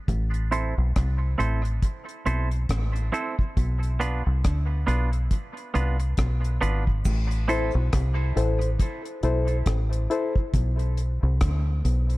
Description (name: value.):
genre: dub reggae.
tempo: 69 BPM.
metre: 4/4.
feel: swing 58% on 16ths.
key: A minor.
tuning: A4 = 437 Hz.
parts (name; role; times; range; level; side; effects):
deep dub fingered electric bass; bass; 0.1-12.2 s; G#1 to D2; -23 LUFS; equal; none.
deep reggae drum kit; drums; 0.1-12.2 s; crash cymbal, hi-hat, kick drum, rim click; -27 LUFS; equal; none.
semi-hollow electric guitar; accompaniment; 0.5-7.7 s; B3 to C5; -32 LUFS; right 4 dB; high-pass filter, low-pass filter, dub echo.
cabasa; percussion; 7.1-7.3 s; none; -48 LUFS; right 8 dB; dub echo.
barky reed electric piano; stabs; 7.5-10.3 s; E4 to C5; -29 LUFS; left 3 dB; high-pass filter, low-pass filter, dub echo.
room: studio reverb.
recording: echo-heavy mix.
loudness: -22 LUFS.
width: side -19 dB against mid.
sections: 0.0-7.1 A section; 7.1-12.2 B section.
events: break 0.0-7.1; part muted 7.1-12.2.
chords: 0.1 Am; 3.6 Bdim; 7.1 Am; 10.5 Bm.